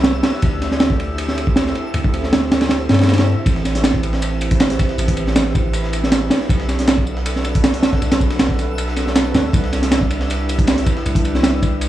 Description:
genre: drum and bass, jungle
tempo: 158 BPM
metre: 4/4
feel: straight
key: unclear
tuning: A4 = 441 Hz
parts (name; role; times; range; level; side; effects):
- warbly tape-like pad; sustained chords; 0.0-11.9 s; C4 to B4; -24 LUFS; right 1 dB; chorus, built-in reverb
- long sustained 808-style bass; bass; 0.0-11.9 s; A1 to G2; -21 LUFS; equal; none
- crunchy breakbeat drum kit; drums; 0.0-11.9 s; kick drum, ride cymbal, snare drum; -16 LUFS; right 1 dB; none
- twinkling granular texture; texture; 0.0-11.9 s; E5 to E6; -32 LUFS; right 1 dB; built-in reverb
- dusty soul sampler-style drum kit; drums; 3.5-11.9 s; hi-hat, snare drum, tambourine; -31 LUFS; left 2 dB; high-pass filter on perc, high-pass filter on snare, high-pass filter on hats
room: light reverb, small room ambience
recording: dry, gritty hardware recording, transformer saturation, studio ambience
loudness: -15 LUFS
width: side -13 dB against mid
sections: 0.0-11.9 A section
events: none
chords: 0.4 D7sus4; 3.5 Am7; 6.5 D69/B; 9.5 Cmaj7

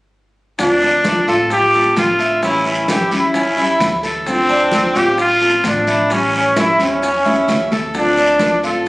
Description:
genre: latin, Cuban son and guajira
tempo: 130 BPM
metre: 4/4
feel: straight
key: D minor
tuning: A4 = 440 Hz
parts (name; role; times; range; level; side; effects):
- clear trumpet; melody; 0.6-8.9 s; C4 to A4; -15 LUFS; equal; none
- nylon-string guitar; accompaniment; 0.6-8.9 s; D3 to F4; -21 LUFS; left 1 dB; none
- upright bass; bass; 0.6-8.9 s; A1 to E2; -29 LUFS; equal; none
- bongos; percussion; 0.6-8.6 s; none; -23 LUFS; left 1 dB; none
- congas; percussion; 0.6-8.9 s; none; -26 LUFS; equal; none
- guiro; percussion; 0.6-8.9 s; none; -26 LUFS; right 1 dB; none
- maracas; percussion; 0.6-8.9 s; none; -33 LUFS; left 1 dB; none
- Cuban tres; arpeggios; 0.8-8.9 s; C#4 to A4; -20 LUFS; right 1 dB; none
room: moderate small room reverb, RT60 0.5 s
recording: recorded on a phone in the room, studio reverb, faint mains hum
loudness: -12 LUFS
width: side -20 dB against mid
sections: 0.6-8.9 A section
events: drum fill 7.3-7.9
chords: 0.6 Dm7; 2.4 A7; 4.3 Dm7; 6.1 A7; 7.9 Dm7

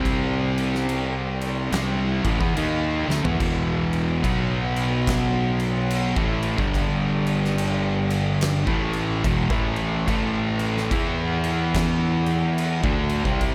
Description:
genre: stoner and doom metal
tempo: 72 BPM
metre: 4/4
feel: swing 62% on 8ths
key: E minor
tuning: A4 = 439 Hz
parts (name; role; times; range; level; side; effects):
- distorted electric guitar; riff; 0.0-13.5 s; E2 to E4; -30 LUFS; equal; distortion
- thick fuzz guitar; riff; 0.0-13.5 s; E2 to E4; -30 LUFS; equal; distortion
- thick fuzz guitar; riff; 0.0-13.5 s; E2 to E4; -29 LUFS; equal; distortion
- fuzz fingered electric bass; bass; 0.0-13.5 s; E1 to E2; -31 LUFS; equal; overdrive
- oversized low-tuned drum kit; drums; 0.1-13.5 s; crash cymbal, kick drum, snare drum, splash cymbal, toms; -30 LUFS; equal; none
room: light reverb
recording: none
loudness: -23 LUFS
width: mono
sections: 0.0-13.5 A section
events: drum fill 3.0-3.4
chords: 0.0 C5; 1.7 A5; 3.4 E5; 4.2 B5; 6.1 A5; 6.5 G5; 8.6 E5; 10.1 A5; 10.9 E5; 12.8 D5

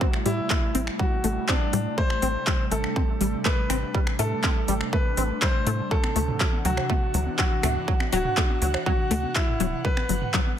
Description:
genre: progressive house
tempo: 122 BPM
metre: 4/4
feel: straight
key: A dorian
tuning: A4 = 441 Hz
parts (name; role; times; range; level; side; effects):
- bright concert grand piano; melody; 0.0-10.5 s; D4 to C5; -30 LUFS; left 1 dB; dub echo
- airy breathy pad; sustained chords; 0.0-10.6 s; C3 to F#5; -32 LUFS; right 2 dB; chorus, phaser, sidechain pumping
- tight sequenced synth; arpeggios; 0.0-10.4 s; F#3 to C4; -30 LUFS; left 2 dB; chorus, phaser, sidechain pumping, dub echo
- electronic kick drum; drums; 0.0-10.4 s; none; -25 LUFS; equal; none
- downlifter; sound effects; 0.0-2.0 s; none; -45 LUFS; equal; none
- big-room dance drum kit; drums; 0.1-10.4 s; finger snaps, handclaps, hi-hat; -29 LUFS; equal; sidechain pumping on hats, sidechain pumping on cymbals
- tight sequencer bass; bass; 0.3-10.2 s; D1 to A2; -27 LUFS; equal; sidechain pumping
- electronic congas, toms and bongos; percussion; 6.0-10.6 s; none; -35 LUFS; right 3 dB; sidechain pumping on perc, sidechain pumping on toms
room: light reverb, digital ambience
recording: faint mains hum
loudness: -22 LUFS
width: side -9 dB against mid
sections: 0.0-10.6 A section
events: none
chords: 0.0 Am7; 5.9 D9; 9.8 Gmaj7

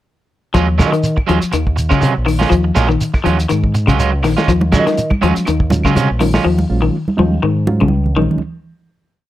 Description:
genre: afrobeat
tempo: 122 BPM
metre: 4/4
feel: swing 55% on 16ths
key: Eb minor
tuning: A4 = 443 Hz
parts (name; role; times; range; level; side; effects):
- electric guitar at the edge of break-up; arpeggios; 0.5-8.4 s; Db3 to F3; -17 LUFS; left 4 dB; none
- electric guitar at the edge of break-up; stabs; 0.5-6.5 s; Gb3 to F4; -19 LUFS; right 7 dB; none
- fingered electric bass with an envelope filter; bass; 0.5-8.3 s; Bb1 to Eb3; -17 LUFS; equal; none
- warm soul drum kit; drums; 0.5-6.4 s; hi-hat, kick drum, snare drum; -19 LUFS; equal; none
- shekere; percussion; 0.6-6.4 s; none; -22 LUFS; right 2 dB; none
- claves; percussion; 0.8-6.3 s; none; -32 LUFS; left 1 dB; none
- congas; percussion; 4.5-8.5 s; none; -20 LUFS; right 2 dB; none
- reed electric piano; accompaniment; 4.7-8.4 s; Gb3 to F4; -20 LUFS; right 4 dB; fast tremolo
room: light reverb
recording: none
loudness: -12 LUFS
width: side -14 dB against mid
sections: 0.5-8.4 groove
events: drum fill 7.8-8.4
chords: 0.5 Ebm11

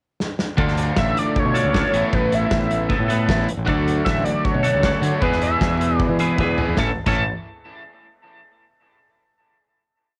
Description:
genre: indie rock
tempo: 155 BPM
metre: 4/4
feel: straight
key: A major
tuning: A4 = 445 Hz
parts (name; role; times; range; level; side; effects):
- loose indie drum kit; drums; 0.2-7.2 s; crash cymbal, hi-hat, kick drum, snare drum, toms; -27 LUFS; equal; cassette tape
- overdriven electric guitar; riff; 0.6-7.2 s; E2 to G#4; -30 LUFS; equal; subtle chorus, tape echo
- twelve-string electric guitar; riff; 0.6-7.2 s; D3 to A4; -25 LUFS; equal; none
- fuzz fingered electric bass; bass; 0.6-7.2 s; A1 to E3; -26 LUFS; equal; overdrive
- overdriven synth lead; melody; 1.0-7.2 s; B4 to A5; -27 LUFS; equal; phaser, cassette tape, tape echo
room: little or no reverb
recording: home recording on cassette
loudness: -20 LUFS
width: mono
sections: 0.0-0.6 pickup bar; 0.6-6.8 pre-chorus; 6.8-8.3 final chord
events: drum fill 0.2-0.6, 6.4-6.8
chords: 0.0 N.C.; 0.6 Dm; 1.9 Asus2; 3.7 D; 5.2 E; 6.8 A

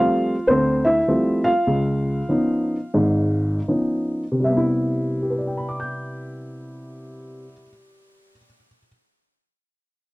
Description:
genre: solo jazz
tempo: 76-110 BPM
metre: 4/4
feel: swing 68% on 8ths, rubato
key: C major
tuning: A4 = 439 Hz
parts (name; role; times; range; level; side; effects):
- dark upright piano; solo; 0.0-8.9 s; Ab1 to G6; -19 LUFS; equal; none
room: light reverb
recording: dry, close 1970s-style studio recording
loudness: -19 LUFS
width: side -21 dB against mid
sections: 0.0-4.4 A section; 4.4-7.6 B section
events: slowing down 0.0-4.4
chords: 0.0 G9sus4; 1.7 Db9; 4.4 Cmaj7

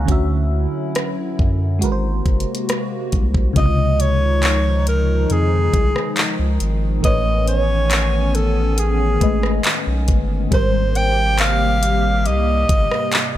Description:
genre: contemporary R&B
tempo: 69 BPM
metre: 4/4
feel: straight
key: Db lydian from 3.6 s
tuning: A4 = 441 Hz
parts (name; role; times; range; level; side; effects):
- FM electric piano with auto-pan; accompaniment; 0.0-13.4 s; Ab2 to Gb5; -25 LUFS; left 1 dB; phaser
- hollow soft pad; sustained chords; 0.0-13.4 s; C3 to G#5; -26 LUFS; equal; chorus
- round analog bass; bass; 0.0-13.4 s; Gb1 to F#2; -19 LUFS; equal; none
- smooth R&B drum kit; drums; 0.1-13.3 s; handclaps, hi-hat, kick drum, rim click; -19 LUFS; equal; none
- breathy alto saxophone; melody; 3.6-13.4 s; Ab4 to G5; -21 LUFS; equal; none
room: digital ambience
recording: none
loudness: -15 LUFS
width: side -13 dB against mid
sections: 0.0-3.6 A section; 3.6-13.4 B section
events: none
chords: 0.1 Dmaj9; 1.8 Ab9; 3.6 Dbmaj9; 7.0 Amaj9; 10.5 Abmaj9

